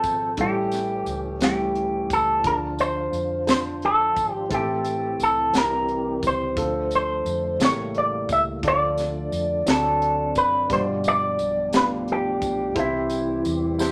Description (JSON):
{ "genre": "slow gospel", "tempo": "58 BPM (dotted quarters)", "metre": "6/8", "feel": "straight", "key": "unclear", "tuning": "A4 = 440 Hz", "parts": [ { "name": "electric guitar with an envelope filter", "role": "melody", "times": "0.0-13.8 s", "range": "E4 to E5", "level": "-25 LUFS", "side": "equal", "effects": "none" }, { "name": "dark grand piano", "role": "accompaniment", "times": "0.0-13.9 s", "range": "G2 to A5", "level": "-30 LUFS", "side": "equal", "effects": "none" }, { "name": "percussive tonewheel organ", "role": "sustained chords", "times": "0.0-13.9 s", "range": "B2 to C5", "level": "-37 LUFS", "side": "equal", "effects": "slow rotary speaker, overdrive, chorus vibrato" }, { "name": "hollow-body short-scale fingered electric bass", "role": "bass", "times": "0.0-13.9 s", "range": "F#1 to F2", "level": "-37 LUFS", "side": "equal", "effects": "none" }, { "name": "crisp fusion drum kit", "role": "drums", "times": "0.0-13.9 s", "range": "hi-hat, kick drum, snare drum", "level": "-29 LUFS", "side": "equal", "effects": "none" }, { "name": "tambourine", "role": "percussion", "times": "0.0-13.9 s", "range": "none", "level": "-42 LUFS", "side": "equal", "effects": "none" }, { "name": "bright horn section", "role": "melody", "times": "13.8-13.9 s", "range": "C4 to G4", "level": "-40 LUFS", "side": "equal", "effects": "none" } ], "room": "moderate studio reverb, RT60 0.6 s", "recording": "none", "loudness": "-23 LUFS", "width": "mono", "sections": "0.0-13.9 A section", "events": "none", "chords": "0.4 A7; 2.4 Dm; 4.5 Am; 5.5 C; 6.6 Dm; 7.6 A7b9; 8.6 Dm; 9.7 D7; 10.7 G7; 12.8 C", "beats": "| 0.38 1.41 | 2.44 3.47 | 4.51 5.54 | 6.57 7.60 | 8.63 9.66 | 10.70 11.73 | 12.76 13.79" }